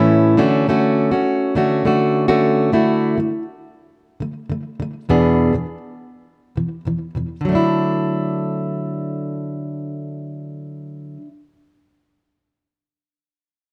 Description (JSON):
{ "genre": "pop", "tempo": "102 BPM", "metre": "4/4", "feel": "straight", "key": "D major", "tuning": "A4 = 440 Hz", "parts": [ { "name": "fingerpicked plugged-in steel-string acoustic guitar", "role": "solo", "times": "0.0-11.3 s", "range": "E2 to G#4", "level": "-19 LUFS", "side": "equal", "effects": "slapback echo" } ], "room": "light reverb", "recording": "dark, warm production", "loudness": "-19 LUFS", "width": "mono", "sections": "0.0-2.7 A section; 2.7-7.4 B section; 7.4-9.8 C section", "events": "none", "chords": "0.4 Dmaj7; 2.7 Dadd9; 5.1 E7; 7.4 Dadd9" }